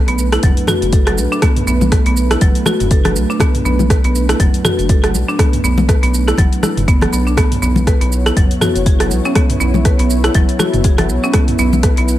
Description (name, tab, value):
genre	afro house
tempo	121 BPM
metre	4/4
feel	swing 57% on 16ths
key	B minor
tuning	A4 = 438 Hz
part	dark analog pad	sustained chords	0.0-12.2 s	A3 to C#5	-22 LUFS	right 2 dB	chorus, sidechain pumping
part	buzzing marimba with hard mallets	arpeggios	0.0-12.0 s	F#3 to B4	-19 LUFS	equal	sidechain pumping, digital delay
part	round analog bass	bass	0.1-12.2 s	F#1 to B1	-17 LUFS	equal	sidechain pumping
part	deep house drum kit	drums	0.1-12.2 s	hi-hat, rim click, shaker, toms	-20 LUFS	right 1 dB	overdrive
part	electronic kick drum	drums	0.4-11.9 s	none	-13 LUFS	equal	overdrive
part	congas	percussion	0.7-11.8 s	none	-21 LUFS	left 4 dB	none
room	digital ambience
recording	none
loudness	-11 LUFS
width	side -13 dB against mid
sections	0.0-12.2 A section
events	none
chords	0.0 Bm7; 7.4 C#m7